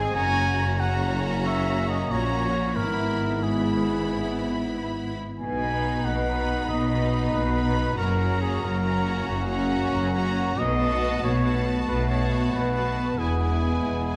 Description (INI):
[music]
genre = cinematic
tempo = 92 BPM (dotted quarters)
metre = 12/8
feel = straight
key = F# mixolydian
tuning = A4 = 439 Hz
[part]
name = rich symphonic violin section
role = melody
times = 0.0-14.2 s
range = G#5 to B5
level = -38 LUFS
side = equal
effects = none
[part]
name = clear symphonic violin section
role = second line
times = 0.0-14.2 s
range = D#4 to G#4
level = -37 LUFS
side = equal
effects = none
[part]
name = clear symphonic viola section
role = accompaniment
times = 0.0-14.2 s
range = B3 to C#4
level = -36 LUFS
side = equal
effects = none
[part]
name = mellow French horn section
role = sustained chords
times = 0.0-14.2 s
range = G#3 to E4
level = -34 LUFS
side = equal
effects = none
[part]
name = warm trumpet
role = stabs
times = 0.0-14.2 s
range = F#4 to G#5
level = -32 LUFS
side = equal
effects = none
[part]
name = rich symphonic cello section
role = bass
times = 0.0-14.2 s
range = E2 to B2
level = -30 LUFS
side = equal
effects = none
[part]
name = warm symphonic double bass section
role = bass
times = 0.0-14.2 s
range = E1 to B1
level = -32 LUFS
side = equal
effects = none
[sound]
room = wet recital hall reverb, RT60 1.5 s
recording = none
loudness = -25 LUFS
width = mono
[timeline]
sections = 0.0-14.2 A section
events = none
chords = 0.2 F#; 2.8 E/G#; 5.4 B; 8.0 F#; 10.6 B7; 13.2 E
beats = | 0.16 0.81 1.46 2.11 | 2.76 3.42 4.08 4.74 | 5.40 6.05 6.70 7.34 | 7.99 8.64 9.28 9.93 | 10.58 11.23 11.88 12.53 | 13.20 13.86